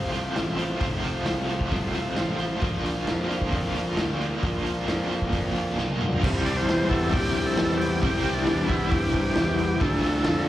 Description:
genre	garage rock duo or trio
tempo	133 BPM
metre	4/4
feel	straight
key	unclear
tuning	A4 = 441 Hz
part	combo organ	sustained chords	0.0-10.5 s	E4 to D5	-34 LUFS	left 1 dB	spring reverb
part	overdriven electric guitar	riff	0.0-10.5 s	F2 to F4	-27 LUFS	equal	tremolo, slapback echo
part	fuzz fingered electric bass	bass	0.0-10.5 s	F1 to G2	-29 LUFS	equal	overdrive
part	raw garage drum kit	drums	0.2-10.4 s	crash cymbal, hi-hat, kick drum, snare drum, toms	-28 LUFS	equal	none
part	overdriven combo organ	melody	6.5-10.4 s	D4 to D5	-29 LUFS	equal	none
room	light reverb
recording	live gig heard through the venue's PA, recital hall reverb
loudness	-22 LUFS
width	side -13 dB against mid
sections	0.0-6.2 A section; 6.2-10.5 B section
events	drum fill 5.8-6.2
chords	0.0 F; 2.6 Bb; 6.2 C; 9.8 Dm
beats	0.37 | 0.82 1.27 1.72 2.17 | 2.63 3.08 3.53 3.98 | 4.43 4.88 5.34 5.79 | 6.24 6.69 7.13 7.58 | 8.03 8.48 8.93 9.38 | 9.82 10.27

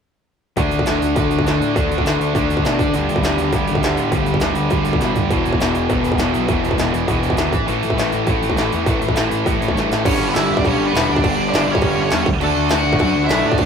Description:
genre	punk rock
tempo	203 BPM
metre	4/4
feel	straight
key	unclear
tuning	A4 = 440 Hz
part	overdriven semi-hollow guitar	riff	0.6-13.7 s	E2 to D4	-21 LUFS	left 8 dB	none
part	tight distorted guitar	riff	0.6-13.7 s	E2 to D4	-22 LUFS	right 9 dB	distortion
part	fuzz picked electric bass	bass	0.6-13.7 s	E1 to B2	-23 LUFS	equal	overdrive
part	industrial drum kit	drums	0.6-13.7 s	crash cymbal, hi-hat, kick drum, snare drum, toms	-20 LUFS	equal	distortion
part	overdriven electric guitar	melody	10.1-13.7 s	B3 to A5	-21 LUFS	right 1 dB	none
room	moderate studio reverb, RT60 0.6 s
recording	band playing live in one room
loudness	-15 LUFS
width	side -7 dB against mid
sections	0.6-10.0 A section; 10.0-13.7 B section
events	drum fill 5.0, 9.8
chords	0.6 D5; 2.8 G5/D; 5.3 E5; 7.5 A5; 10.0 G; 12.3 D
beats	| 0.57 0.87 1.16 1.46 | 1.76 2.05 2.35 2.64 | 2.94 3.23 3.53 3.83 | 4.12 4.42 4.71 5.01 | 5.31 5.60 5.90 6.20 | 6.49 6.79 7.08 7.38 | 7.68 7.97 8.27 8.57 | 8.86 9.16 9.46 9.75 | 10.05 10.34 10.64 10.94 | 11.23 11.53 11.82 12.12 | 12.41 12.71 13.00 13.30 | 13.59

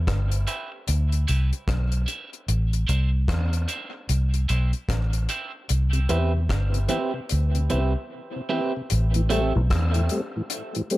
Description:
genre	dub reggae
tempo	75 BPM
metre	4/4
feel	swing 61% on 16ths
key	A minor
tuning	A4 = 440 Hz
part	vintage muted fingered electric bass	bass	0.0-10.1 s	G1 to E2	-22 LUFS	equal	none
part	deep reggae drum kit	drums	0.1-11.0 s	hi-hat, kick drum, rim click	-29 LUFS	left 1 dB	none
part	mellow tonewheel organ	accompaniment	0.3-11.0 s	A2 to C4	-30 LUFS	left 2 dB	chorus vibrato, slow rotary speaker, high-pass filter, dub echo
part	electric guitar at the edge of break-up	accompaniment	0.5-9.5 s	C4 to E5	-30 LUFS	right 3 dB	high-pass filter, dub echo
room	light reverb, small room reverb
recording	none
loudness	-22 LUFS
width	side -17 dB against mid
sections	0.0-8.9 A section; 8.9-11.0 B section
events	break 8.1-8.9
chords	0.0 Cmaj7; 2.5 Am7; 5.7 Cmaj7; 8.9 Am7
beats	0.08 0.88 1.69 | 2.49 3.29 4.09 4.90 | 5.70 6.50 7.30 8.11 | 8.91 9.71 10.51

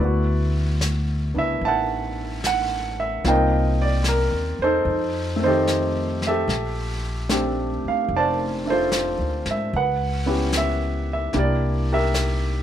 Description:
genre	jazz ballad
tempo	74 BPM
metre	4/4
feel	swing 68% on 8ths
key	unclear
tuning	A4 = 440 Hz
part	warm baby grand piano	accompaniment	0.0-12.6 s	Eb3 to A5	-22 LUFS	right 1 dB	none
part	upright bass	bass	0.0-12.6 s	F1 to G#2	-24 LUFS	equal	none
part	vintage brush drum kit	drums	0.8-12.6 s	brushed snare drum, hi-hat, snare drum	-31 LUFS	left 2 dB	none
room	light reverb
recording	none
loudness	-20 LUFS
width	side -10 dB against mid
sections	0.0-12.6 A section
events	none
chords	0.0 D69; 3.2 Cm7; 4.9 F9; 6.5 Bbmaj13; 9.7 C#m7b5; 11.3 C9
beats	0.80 1.61 2.42 | 3.23 4.04 4.85 5.66 | 6.47 7.28 8.09 8.90 | 9.71 10.51 11.32 12.14

